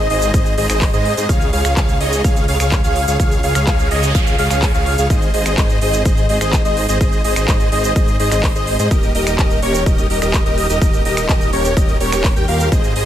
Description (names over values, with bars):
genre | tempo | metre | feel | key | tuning
EDM, festival progressive house | 126 BPM | 4/4 | straight | Ab major | A4 = 440 Hz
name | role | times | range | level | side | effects
wide unison lead | arpeggios | 0.0-13.1 s | Db5 to G5 | -22 LUFS | equal | analog chorus, cassette tape, sidechain pumping, ping-pong delay
dense compressed supersaw | riff | 0.0-13.1 s | G4 to G5 | -20 LUFS | equal | sidechain pumping, ping-pong delay
detuned saw bass | bass | 0.0-13.1 s | Eb1 to Ab2 | -20 LUFS | equal | sidechain pumping
big-room dance drum kit | drums | 0.1-13.1 s | finger snaps, handclaps, hi-hat, shaker | -24 LUFS | right 1 dB | none
electronic kick drum | drums | 0.3-12.8 s | none | -16 LUFS | equal | none
noise sweep | sound effects | 3.8-5.1 s | none | -28 LUFS | right 3 dB | none
room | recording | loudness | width
digital ambience | none | -13 LUFS | side -11 dB against mid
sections
0.0-13.1 A section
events
noise sweep 3.8-5.1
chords
0.0 Ab; 1.3 Db; 5.1 Ab; 8.9 Eb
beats
0.34 0.82 | 1.29 1.77 2.24 2.72 | 3.20 3.67 4.15 4.62 | 5.10 5.58 6.05 6.53 | 7.01 7.48 7.96 8.44 | 8.91 9.39 9.86 10.34 | 10.82 11.29 11.77 12.24 | 12.72